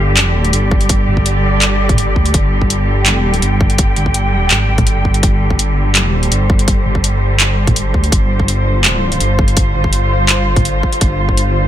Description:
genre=half-time drum and bass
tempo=166 BPM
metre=4/4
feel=half-time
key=unclear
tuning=A4 = 440 Hz
part: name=muted chamber cello section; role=sustained chords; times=0.0-11.7 s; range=D3 to G5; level=-18 LUFS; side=equal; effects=sidechain pumping
part: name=dark detuned saw bass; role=bass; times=0.0-11.7 s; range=G1 to D2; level=-15 LUFS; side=equal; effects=none
part: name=drum and bass drum kit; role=drums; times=0.2-11.4 s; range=handclaps, hi-hat, toms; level=-15 LUFS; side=equal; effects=none
part: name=electronic kick drum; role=drums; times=0.7-11.4 s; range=none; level=-15 LUFS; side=equal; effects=none
room=little or no reverb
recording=none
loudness=-11 LUFS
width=side -11 dB against mid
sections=0.0-11.7 A section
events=none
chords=0.0 G5

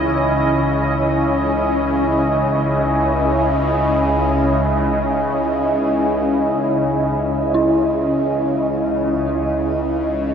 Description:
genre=dark ambient drone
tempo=free time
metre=none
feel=none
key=C# minor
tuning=A4 = 440 Hz
part: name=deep dark ambient pad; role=sustained chords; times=0.0-10.3 s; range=C#4 to D#5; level=-18 LUFS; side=right 1 dB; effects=chorus, built-in reverb, shimmer reverb
part: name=dark detuned synth bell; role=arpeggios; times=0.0-10.3 s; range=E4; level=-25 LUFS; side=right 1 dB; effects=chorus, diffuse ambient delay, shimmer reverb
part: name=bowed-like drone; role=drone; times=0.0-10.3 s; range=C#2 to C#3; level=-20 LUFS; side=left 1 dB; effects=built-in reverb, phaser
room=wet huge ambient reverb, RT60 8.6 s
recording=none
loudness=-16 LUFS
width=side -7 dB against mid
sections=0.0-10.3 A section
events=none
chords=0.0 C#madd9

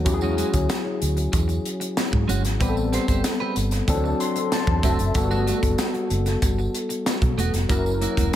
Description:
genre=polished 1980s jazz-funk pop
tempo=94 BPM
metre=4/4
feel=straight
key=unclear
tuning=A4 = 440 Hz
part: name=overdriven tine electric piano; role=accompaniment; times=0.0-8.4 s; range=E3 to C6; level=-25 LUFS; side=left 2 dB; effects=ensemble chorus
part: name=vintage muted fingered electric bass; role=bass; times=0.0-8.3 s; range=E1 to G#2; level=-24 LUFS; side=right 1 dB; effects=none
part: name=clean electric guitar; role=riff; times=0.1-8.4 s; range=G#3 to C5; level=-30 LUFS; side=right 5 dB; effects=wide subtle chorus
part: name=crisp fusion drum kit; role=drums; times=0.1-8.4 s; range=hi-hat, kick drum, snare drum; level=-25 LUFS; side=equal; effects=gated reverb
part: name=tambourine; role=percussion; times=0.1-8.4 s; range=none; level=-42 LUFS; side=right 7 dB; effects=none
room=light reverb, small room ambience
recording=none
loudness=-20 LUFS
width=side -12 dB against mid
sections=0.0-8.4 A section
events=tine electric piano fill 3.9-5.2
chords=0.1 E69; 2.6 Am9; 3.9 D7; 5.2 Gmaj9; 7.7 F#7

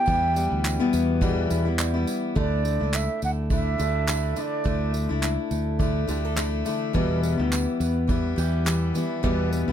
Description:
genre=acoustic pop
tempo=105 BPM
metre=4/4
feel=swing 55% on 16ths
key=unclear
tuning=A4 = 440 Hz
part: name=breathy mellow bansuri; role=melody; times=0.0-5.0 s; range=D5 to G5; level=-27 LUFS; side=right 3 dB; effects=none
part: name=picked steel-string acoustic guitar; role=accompaniment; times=0.0-9.7 s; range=E2 to E4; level=-26 LUFS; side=left 4 dB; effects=none
part: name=fingerpicked acoustic archtop guitar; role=arpeggios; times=0.0-9.7 s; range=G3 to A4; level=-33 LUFS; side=right 9 dB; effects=none
part: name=fingered electric bass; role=bass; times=0.1-9.7 s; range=C#2 to E2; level=-26 LUFS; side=right 1 dB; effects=none
part: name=unplugged drum kit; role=drums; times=0.1-9.7 s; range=handclaps, kick drum, tambourine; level=-28 LUFS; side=right 1 dB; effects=none
part: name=tambourine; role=percussion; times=0.1-9.1 s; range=none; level=-40 LUFS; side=right 6 dB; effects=none
room=light reverb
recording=close, detailed microphones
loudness=-22 LUFS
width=side -10 dB against mid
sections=0.0-2.4 A section; 2.4-9.7 B section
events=none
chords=0.0 Em; 2.4 Dsus2; 6.9 Em

